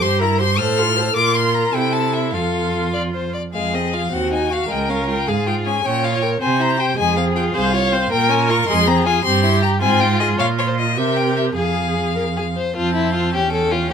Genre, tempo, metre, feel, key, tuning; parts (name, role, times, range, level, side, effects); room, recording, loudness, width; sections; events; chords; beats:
quick classical-period movement for string quartet; 104 BPM (dotted quarters); 6/8; straight; F major, F minor from 3.5 s; A4 = 440 Hz
clear violin; melody; 0.0-13.9 s; Db5 to F6; -21 LUFS; left 6 dB
rich violin; second line; 0.0-13.9 s; Ab3 to D5; -23 LUFS; left 4 dB
clear viola; accompaniment; 0.0-13.9 s; C4 to Db5; -23 LUFS; right 2 dB
warm cello; bass; 0.0-13.9 s; C2 to C3; -21 LUFS; right 5 dB
little or no reverb; close, detailed microphones; -16 LUFS; side -7 dB against mid
0.0-3.5 A section; 3.5-12.8 B section; 12.8-13.9 B section
0.0 C7/G; 0.6 F/A; 1.2 Bb5; 1.7 C6; 2.3 F; 3.5 Fm; 4.1 Ebm69; 4.7 Db; 5.8 Bbm; 6.4 C; 7.0 Fm; 8.1 Bbm; 8.7 Fm; 9.2 C/G; 9.8 Fm/Ab; 10.4 Bb5; 11.0 C5; 11.6 Fm; 12.8 F; 13.3 A7b13/E
| 0.02 0.59 | 1.16 1.74 | 2.33 2.93 | 3.54 4.12 | 4.70 5.27 | 5.84 6.41 | 6.98 7.54 | 8.11 8.68 | 9.25 9.82 | 10.39 10.97 | 11.56 12.16 | 12.76 13.34 | 13.91